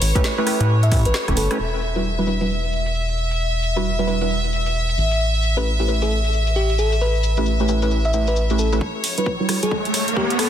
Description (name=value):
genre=UK garage, two-step garage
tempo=133 BPM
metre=4/4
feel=swing 62% on 16ths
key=E dorian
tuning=A4 = 436 Hz
part: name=bell-like FM electric piano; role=melody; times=0.0-1.6, 5.6-10.5 s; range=G4 to E5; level=-26 LUFS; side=left 1 dB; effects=chorus, cassette tape, ping-pong delay
part: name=bright chamber violin section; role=sustained chords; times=0.0-10.5 s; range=C#5 to E5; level=-25 LUFS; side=left 1 dB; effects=sidechain pumping
part: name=rubbery square bass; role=bass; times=0.0-8.8 s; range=E1 to A2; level=-21 LUFS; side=equal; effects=tube saturation
part: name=garage drum kit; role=drums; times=0.0-10.5 s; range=hi-hat, rim click, shaker, snare drum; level=-27 LUFS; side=equal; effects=high-pass filter on hats, low-pass filter on hats, high-pass filter on snare, low-pass filter on snare, high-pass filter on perc, low-pass filter on perc, high-pass filter on room, low-pass filter on room
part: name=deep mellow chord stab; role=stabs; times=0.2-9.8 s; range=G3 to B4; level=-24 LUFS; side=right 2 dB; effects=chorus, ping-pong delay
part: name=electronic kick drum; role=drums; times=0.2-1.4, 8.8-10.3 s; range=none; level=-23 LUFS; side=equal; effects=high-pass filter on kick
part: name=riser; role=sound effects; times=9.1-10.5 s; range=none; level=-24 LUFS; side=equal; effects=none
room=light reverb, digital ambience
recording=dense, heavily limited modern master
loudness=-18 LUFS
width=side -10 dB against mid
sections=0.0-1.6 A section; 1.6-8.8 B section; 8.8-10.5 C section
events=drum fill 0.9-1.6; band accent 1.5; build-up 8.8-10.5; filter sweep on synth stab 8.8-10.5; riser 9.1-10.5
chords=0.0 A7; 1.6 Em9; 5.0 A7; 8.8 Em9